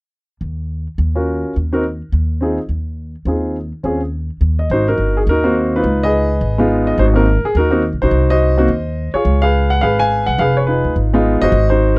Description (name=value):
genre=jazz piano trio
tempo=210 BPM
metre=4/4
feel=swing 61% on 8ths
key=Ab mixolydian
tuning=A4 = 441 Hz
part: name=upright bass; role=bass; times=0.4-12.0 s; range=F1 to Eb2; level=-17 LUFS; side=equal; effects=none
part: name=warm grand piano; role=melody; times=1.2-12.0 s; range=Ab3 to Ab5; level=-15 LUFS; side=equal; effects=none
room=little or no reverb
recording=dry, close 1970s-style studio recording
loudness=-13 LUFS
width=side -28 dB against mid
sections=0.1-4.7 A section; 4.7-12.0 B section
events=none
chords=0.1 Ebm9; 1.8 N.C.; 2.4 Ab6/Eb; 4.1 N.C.; 4.7 Ab9; 5.8 Db9; 7.0 Ab9; 9.3 Db9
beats=| 0.12 0.41 0.69 0.98 | 1.26 1.55 1.84 2.12 | 2.41 2.69 2.98 3.27 | 3.55 3.84 4.12 4.41 | 4.70 4.98 5.27 5.55 | 5.84 6.12 6.41 6.69 | 6.98 7.26 7.55 7.83 | 8.12 8.40 8.69 8.97 | 9.25 9.54 9.82 10.11 | 10.39 10.67 10.96 11.24 | 11.53 11.81